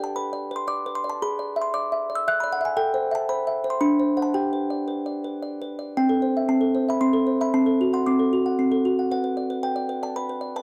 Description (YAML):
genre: classical, lullaby for music box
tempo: 114 BPM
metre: 3/4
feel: straight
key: G major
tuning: A4 = 440 Hz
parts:
  - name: music box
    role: solo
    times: 0.0-10.6 s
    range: C4 to F#6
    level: -24 LUFS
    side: equal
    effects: none
room: light reverb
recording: dry, close 1970s-style studio recording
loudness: -24 LUFS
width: mono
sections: 0.0-6.0 A section; 6.0-10.6 B section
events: none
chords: 0.0 G; 1.2 E7/G#; 2.8 Am; 3.8 D7; 4.4 G; 6.0 Am/C; 7.5 D7/C; 9.1 Bm